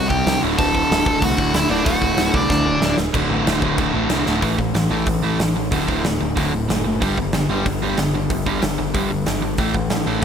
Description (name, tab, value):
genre	punk rock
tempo	186 BPM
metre	4/4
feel	straight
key	D mixolydian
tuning	A4 = 439 Hz
part	nasal lead guitar with a parked wah	melody	0.0-3.0 s	D4 to A5	-21 LUFS	equal	overdrive
part	overdriven electric guitar	riff	0.0-10.2 s	D2 to C4	-23 LUFS	right 11 dB	none
part	sludgy distorted guitar	riff	0.0-10.2 s	D2 to C4	-23 LUFS	left 10 dB	overdrive
part	growling picked electric bass	bass	0.0-10.2 s	D1 to D2	-26 LUFS	equal	overdrive
part	big rock drum kit	drums	0.1-10.2 s	crash cymbal, hi-hat, kick drum, snare drum	-22 LUFS	equal	none
room	light reverb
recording	none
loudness	-17 LUFS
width	side -8 dB against mid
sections	0.0-3.1 A section; 3.1-4.4 B section; 4.4-10.2 C section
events	drum fill 2.5-3.1, 4.3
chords	0.4 D; 4.4 A5; 5.7 D; 7.0 G5; 9.6 A5